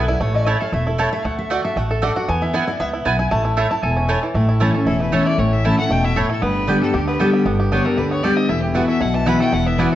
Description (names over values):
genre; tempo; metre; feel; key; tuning
bluegrass; 232 BPM; 4/4; straight; A mixolydian; A4 = 441 Hz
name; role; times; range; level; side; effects
bluegrass banjo; melody; 0.0-10.0 s; E3 to A4; -24 LUFS; right 1 dB; none
picked steel-string acoustic guitar; accompaniment; 0.0-10.0 s; E2 to A5; -20 LUFS; left 1 dB; none
mandolin; stabs; 0.0-9.9 s; A3 to A5; -25 LUFS; right 3 dB; none
upright bass; bass; 0.0-9.8 s; E1 to E2; -22 LUFS; equal; none
clear fiddle; melody; 4.9-10.0 s; G4 to B5; -25 LUFS; left 2 dB; none
room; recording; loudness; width
wet large studio reverb, RT60 1.3 s; worn, warbling old tape, cassette tape, warbly pitch drift, nothing above 7.7 kHz; -16 LUFS; side -12 dB against mid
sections
0.0-4.4 A section; 4.4-10.0 B section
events
steel-string acoustic guitar solo 0.0-4.4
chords
0.2 A; 1.2 D; 2.3 E; 3.3 A; 6.4 G; 8.5 Esus2